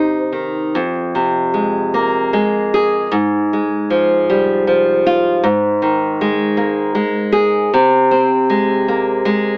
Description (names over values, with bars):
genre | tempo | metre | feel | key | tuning
romantic piece for solo classical guitar | 78 BPM | 3/4 | rubato | F minor | A4 = 440 Hz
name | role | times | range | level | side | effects
nylon-string guitar | solo | 0.0-9.6 s | F2 to C5 | -16 LUFS | equal | none
room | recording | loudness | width
moderate studio ambience, RT60 0.5 s | AM radio sound | -16 LUFS | mono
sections
0.8-9.6 A section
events
none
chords
0.0 Cm; 0.8 Fm; 3.1 Fm/Ab; 5.4 Ab5; 7.7 Ab/C